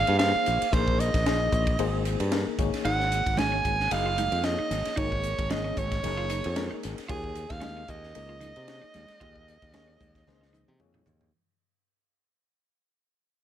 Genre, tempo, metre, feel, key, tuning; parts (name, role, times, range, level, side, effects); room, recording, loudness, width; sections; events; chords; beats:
electric jazz fusion; 113 BPM; 4/4; swing 55% on 16ths; Eb dorian; A4 = 440 Hz
warm soprano saxophone; melody; 0.0-10.8 s; Ab4 to Ab5; -29 LUFS; right 4 dB
reed electric piano; accompaniment; 0.0-11.3 s; Bb3 to Eb5; -34 LUFS; left 10 dB; fast tremolo
modern bright fingered electric bass; bass; 0.0-11.3 s; Gb1 to C3; -30 LUFS; equal
crisp fusion drum kit; drums; 0.1-11.3 s; hi-hat, kick drum, ride cymbal, snare drum, toms; -32 LUFS; equal
clean electric guitar; stabs; 2.8-11.1 s; Db4 to F4; -38 LUFS; right 3 dB; analog chorus
congas; percussion; 2.9-11.2 s; -38 LUFS; right 3 dB
light reverb, small room ambience; -24 LUFS; side -10 dB against mid
0.0-11.3 A section
fade-out 0.0-11.3; drum fill 10.3-11.3
0.0 Bb9sus4; 2.6 Ab9sus4; 7.1 Eb9sus4
0.20 | 0.73 1.26 1.79 2.32 | 2.85 3.38 3.91 4.44 | 4.97 5.50 6.03 6.56 | 7.09 7.62 8.15 8.68 | 9.21 9.74 10.27 10.80